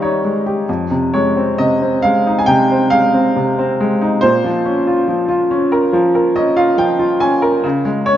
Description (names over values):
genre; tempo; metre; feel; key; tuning
classical, lyrical solo piano; 69 BPM; 4/4; rubato; F minor; A4 = 440 Hz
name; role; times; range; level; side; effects
bright upright piano; solo; 0.0-8.2 s; F2 to Ab5; -12 LUFS; equal; none
room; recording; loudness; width
wet plate reverb, RT60 3.3 s; heard from further back in the room, nothing above 7.7 kHz; -12 LUFS; side -11 dB against mid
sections
0.0-8.2 A section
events
upright piano fill 0.0-0.7, 5.9-7.6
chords
0.0 Abmaj7/C; 0.7 Fm7; 4.2 Bbmadd9; 7.6 Db5